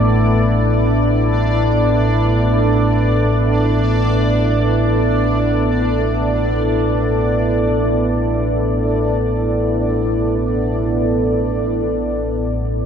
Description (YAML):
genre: dark ambient drone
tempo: free time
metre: none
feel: none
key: unclear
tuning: A4 = 442 Hz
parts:
  - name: deep dark ambient pad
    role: sustained chords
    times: 0.0-12.9 s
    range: B3 to D5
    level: -18 LUFS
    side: equal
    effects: chorus, built-in reverb
  - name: deep rumbling drone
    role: drone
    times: 0.0-12.9 s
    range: A1 to A2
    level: -18 LUFS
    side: equal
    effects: built-in reverb
  - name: bubbling stepped-filter texture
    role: texture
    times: 0.0-11.4 s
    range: D4 to D5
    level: -22 LUFS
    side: right 1 dB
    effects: chorus, built-in reverb
room: wet huge ambient reverb, RT60 8.7 s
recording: none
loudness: -14 LUFS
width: side -7 dB against mid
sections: 0.0-11.4 A section; 11.4-12.9 B section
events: none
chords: 0.0 Asus2